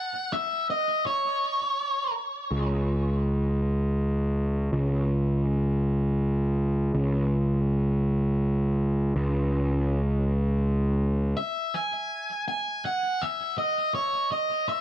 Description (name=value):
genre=post-rock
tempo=81 BPM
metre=3/4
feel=straight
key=unclear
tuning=A4 = 440 Hz
part: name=octave-fuzz lead guitar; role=melody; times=0.0-2.1, 11.4-14.8 s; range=C#5 to G#5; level=-26 LUFS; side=equal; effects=distortion, digital delay
part: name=fuzz picked electric bass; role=bass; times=2.5-11.3 s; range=C#2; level=-23 LUFS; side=equal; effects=overdrive
room=light reverb, digital ambience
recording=dark, warm production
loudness=-24 LUFS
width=side -11 dB against mid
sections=0.0-11.4 A section; 11.4-14.8 B section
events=none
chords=none